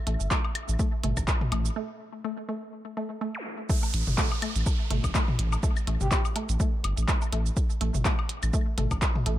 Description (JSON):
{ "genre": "minimal techno", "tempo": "124 BPM", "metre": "4/4", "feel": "swing 56% on 16ths", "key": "unclear", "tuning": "A4 = 440 Hz", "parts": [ { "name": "flickering grainy texture", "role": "texture", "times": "0.0-1.8 s", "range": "E5", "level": "-48 LUFS", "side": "right 1 dB", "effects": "built-in reverb, sidechain pumping" }, { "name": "resonant blip pluck", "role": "riff", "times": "0.1-9.3 s", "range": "A3", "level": "-35 LUFS", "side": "equal", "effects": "chorus, sidechain pumping, tape echo" }, { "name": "saturated sub bass", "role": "bass", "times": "0.1-9.4 s", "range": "G1 to A1", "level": "-27 LUFS", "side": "equal", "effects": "sidechain pumping" }, { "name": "minimal click drum kit", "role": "drums", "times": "0.1-9.4 s", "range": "handclaps, hi-hat, shaker", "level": "-32 LUFS", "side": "right 1 dB", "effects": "none" }, { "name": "electronic kick drum", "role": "drums", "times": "0.3-9.1 s", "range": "none", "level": "-27 LUFS", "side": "equal", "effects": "overdrive" }, { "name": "electronic woodblock and toms", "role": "percussion", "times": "0.3-9.2 s", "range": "none", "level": "-34 LUFS", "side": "left 2 dB", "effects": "analog delay" }, { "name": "zap and downlifter", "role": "sound effects", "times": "3.3-7.6 s", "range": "none", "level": "-38 LUFS", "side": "right 3 dB", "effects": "none" }, { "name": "breathy flute-like synth lead", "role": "melody", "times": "6.0-6.2 s", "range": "G4", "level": "-37 LUFS", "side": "left 1 dB", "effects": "lush chorus, analog delay" } ], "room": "digital ambience", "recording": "echo-heavy mix", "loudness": "-25 LUFS", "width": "side -13 dB against mid", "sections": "0.0-3.7 A section; 3.7-9.4 B section", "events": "break 1.8-3.7; drop 3.7-9.4", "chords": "0.0 A5" }